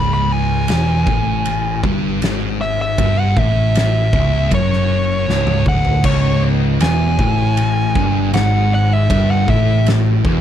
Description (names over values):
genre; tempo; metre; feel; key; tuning
stoner and doom metal; 78 BPM; 4/4; straight; C# minor; A4 = 437 Hz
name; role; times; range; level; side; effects
fuzz lead guitar; melody; 0.0-9.9 s; C#5 to B5; -20 LUFS; equal; distortion, slapback echo
thick fuzz guitar; riff; 0.0-10.4 s; C#2 to A2; -21 LUFS; left 8 dB; distortion
thick fuzz guitar; riff; 0.0-10.4 s; C#2 to A2; -20 LUFS; right 6 dB; distortion
overdriven picked electric bass; bass; 0.0-10.4 s; C#1 to A1; -20 LUFS; left 1 dB; none
oversized low-tuned drum kit; drums; 0.7-10.4 s; crash cymbal, kick drum, ride cymbal, snare drum, toms; -21 LUFS; equal; none
distorted electric guitar; riff; 6.0-10.4 s; C#2 to A2; -22 LUFS; equal; distortion
room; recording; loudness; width
little or no reverb; none; -13 LUFS; side -10 dB against mid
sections
0.0-10.4 A section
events
lead electric guitar solo 0.0-10.4; drum fill 5.3-6.0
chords
0.0 C#m